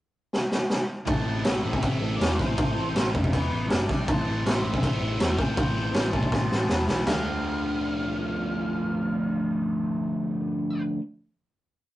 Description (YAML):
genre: garage rock duo or trio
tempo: 160 BPM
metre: 4/4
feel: straight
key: D minor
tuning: A4 = 439 Hz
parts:
  - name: raw garage drum kit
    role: drums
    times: 0.3-7.2 s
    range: china cymbal, crash cymbal, kick drum, snare drum, toms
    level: -25 LUFS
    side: equal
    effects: none
  - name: octave-fuzz lead guitar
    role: melody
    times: 1.1-10.8 s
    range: C5 to A5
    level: -36 LUFS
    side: right 1 dB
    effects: distortion
  - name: crunchy overdriven guitar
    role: riff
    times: 1.1-11.0 s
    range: A2 to D5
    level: -28 LUFS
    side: equal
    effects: phaser
  - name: hollow-body short-scale picked electric bass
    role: bass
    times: 1.1-10.9 s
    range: E1 to E2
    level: -32 LUFS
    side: equal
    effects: overdrive
room: light reverb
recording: rough rehearsal-room recording, warm saturation, nothing above 10.6 kHz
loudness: -24 LUFS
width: side -15 dB against mid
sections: 0.0-1.1 pickup bar; 1.1-7.1 pre-chorus; 7.1-10.1 final chord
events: drum fill 0.3-1.1, 6.3-7.1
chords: 0.0 N.C.; 1.1 Am; 3.3 E5; 3.7 G5; 4.1 Am; 6.7 E5; 7.1 Dm